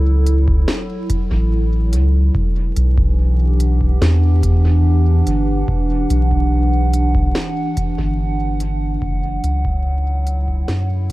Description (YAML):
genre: ambient dub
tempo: 72 BPM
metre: 4/4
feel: straight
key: E dorian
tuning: A4 = 442 Hz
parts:
  - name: warbly tape-like pad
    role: sustained chords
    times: 0.0-11.1 s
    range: E3 to F#5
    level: -22 LUFS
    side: right 1 dB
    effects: chorus, built-in reverb
  - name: soft dub sub bass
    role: bass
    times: 0.0-11.1 s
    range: E1 to F#2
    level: -15 LUFS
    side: equal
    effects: none
  - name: organic electronic drum kit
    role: drums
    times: 0.3-11.1 s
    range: hi-hat, snare drum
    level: -24 LUFS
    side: equal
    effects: overdrive, dub echo
  - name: electronic kick drum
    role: drums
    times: 0.5-11.1 s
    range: none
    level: -22 LUFS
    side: equal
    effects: none
room: digital ambience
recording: vinyl crackle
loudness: -14 LUFS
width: side -18 dB against mid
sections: 0.0-11.1 A section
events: fade-out 6.8-11.1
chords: 0.0 F#m7; 2.4 Em9; 9.0 F#m7